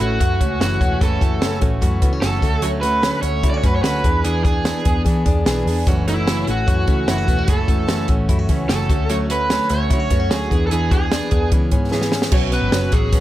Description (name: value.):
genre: jangly indie pop.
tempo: 148 BPM.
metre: 4/4.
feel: straight.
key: F# minor.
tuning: A4 = 441 Hz.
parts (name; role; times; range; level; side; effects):
lead guitar through a small cranked amp; melody; 0.0-13.2 s; E4 to D5; -22 LUFS; right 2 dB; overdrive, slapback echo.
picked plugged-in steel-string acoustic guitar; accompaniment; 0.0-13.2 s; F#2 to G#4; -24 LUFS; right 3 dB; none.
direct-recorded clean electric guitar; arpeggios; 0.0-13.2 s; E3 to G#4; -26 LUFS; left 5 dB; slapback echo.
vintage muted picked electric bass; bass; 0.0-13.2 s; E1 to E3; -22 LUFS; equal; none.
compact cocktail drum kit; drums; 0.0-13.2 s; crash cymbal, hi-hat, kick drum, snare drum; -19 LUFS; equal; none.
room: light reverb, studio ambience.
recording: none.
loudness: -16 LUFS.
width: side -14 dB against mid.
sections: 0.0-12.3 A section.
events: drum fill 11.9-12.3.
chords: 0.0 F#m7; 2.4 Dmaj7; 4.0 E7; 5.9 F#m7; 8.9 Dmaj7; 10.5 E7; 11.5 C#m7; 12.3 F#m.